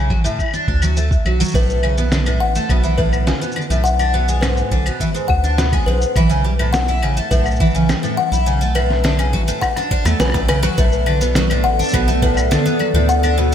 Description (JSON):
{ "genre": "folktronica", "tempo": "104 BPM", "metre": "4/4", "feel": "straight", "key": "B minor", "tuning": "A4 = 439 Hz", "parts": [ { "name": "picked twelve-string acoustic guitar", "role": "arpeggios", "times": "0.0-13.5 s", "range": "G#2 to E4", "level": "-20 LUFS", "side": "equal", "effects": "wide subtle chorus, low-pass filter, analog delay" }, { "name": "round analog bass", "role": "bass", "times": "0.0-13.5 s", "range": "A1 to E2", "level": "-18 LUFS", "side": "equal", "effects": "none" }, { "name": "electronic kick drum", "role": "drums", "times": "0.1-12.3 s", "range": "none", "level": "-20 LUFS", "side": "equal", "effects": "none" }, { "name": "electronic shaker, claves, snare drum and rim click", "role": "drums", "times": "0.3-13.5 s", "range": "none", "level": "-24 LUFS", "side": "equal", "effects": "none" }, { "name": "buzzing kalimba", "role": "second line", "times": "1.6-13.3 s", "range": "B4 to F#5", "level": "-22 LUFS", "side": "left 4 dB", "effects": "diffuse ambient delay" }, { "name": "warbly tape-like pad", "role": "sustained chords", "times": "11.1-13.5 s", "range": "B3 to D5", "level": "-22 LUFS", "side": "left 1 dB", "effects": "chorus, built-in reverb, vintage 12-bit sampler grit" } ], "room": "moderate lush hall reverb, RT60 1.9 s", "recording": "dreamy mix soaked in reverb", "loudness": "-14 LUFS", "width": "side -9 dB against mid", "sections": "0.0-10.8 A section; 10.8-13.5 B section", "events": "drum fill 9.6-10.8", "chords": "0.0 D; 1.5 Bm9; 3.9 E7/B (rootless); 6.2 A7; 8.5 Dmaj7; 10.8 Bm7", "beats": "0.39 0.97 | 1.54 2.12 2.70 3.28 | 3.85 4.43 5.01 5.58 | 6.16 6.74 7.31 7.89 | 8.47 9.04 9.62 10.20 | 10.78 11.35 11.93 12.51 | 13.08" }